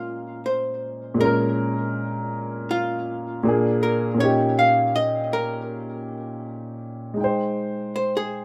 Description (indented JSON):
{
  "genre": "hip hop",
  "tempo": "80 BPM",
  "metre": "4/4",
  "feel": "swing 56% on 16ths",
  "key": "Bb dorian",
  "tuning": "A4 = 440 Hz",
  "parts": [
    { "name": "archtop guitar, miked and amplified", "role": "melody", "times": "0.0-8.4 s", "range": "F4 to F5", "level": "-26 LUFS", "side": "equal", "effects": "tape echo" },
    { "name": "warm upright piano", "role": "accompaniment", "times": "0.0-8.4 s", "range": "Bb2 to G5", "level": "-26 LUFS", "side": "equal", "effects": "cassette tape" }
  ],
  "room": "moderate studio ambience, RT60 0.5 s",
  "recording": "rough home demo mix",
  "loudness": "-23 LUFS",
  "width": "mono",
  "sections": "0.0-8.4 A section",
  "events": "none",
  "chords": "0.0 Bbm7; 3.4 Bb7; 4.2 Eb7/Bb; 7.2 Abmaj7",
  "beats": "0.43 | 1.18 1.93 2.68 3.43 | 4.18 4.93 5.68 6.43 | 7.18 7.93"
}